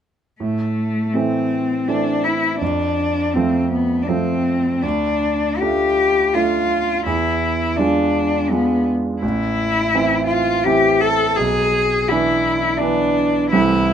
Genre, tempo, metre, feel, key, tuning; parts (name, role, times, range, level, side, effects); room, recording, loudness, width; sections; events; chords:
classical, romantic duo for cello and grand piano; 83 BPM; 3/4; rubato; A minor; A4 = 439 Hz
warm cello; melody; 0.4-13.9 s; A3 to A4; -18 LUFS; left 2 dB
warm concert grand piano; accompaniment; 0.4-13.9 s; A1 to F4; -20 LUFS; right 4 dB
light reverb; -16 LUFS; side -8 dB against mid
0.4-13.9 A section
0.4 Am; 2.6 F; 4.8 Dm; 7.1 E7b9; 9.2 Am; 11.4 E7/B